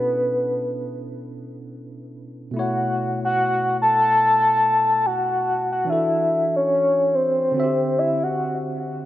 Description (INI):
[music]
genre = R&B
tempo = 72 BPM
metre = 4/4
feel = swing 60% on 16ths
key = B minor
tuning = A4 = 440 Hz
[part]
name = soft octave-layered synth lead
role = melody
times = 0.0-8.8 s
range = B4 to A5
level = -19 LUFS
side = left 1 dB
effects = chorus, tremolo
[part]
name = tine electric piano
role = accompaniment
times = 0.0-9.1 s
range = B2 to E5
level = -28 LUFS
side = right 1 dB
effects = medium stereo tremolo
[sound]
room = moderate lush hall reverb, RT60 3.1 s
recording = rough home demo mix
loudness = -18 LUFS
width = side -13 dB against mid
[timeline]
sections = 0.0-2.5 A section; 2.5-9.1 B section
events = none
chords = 0.0 Bm11; 2.5 B9sus4; 5.9 E9sus4; 7.5 D9sus4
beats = 0.04 0.88 1.71 | 2.54 3.38 4.21 5.04 | 5.88 6.71 7.54 8.38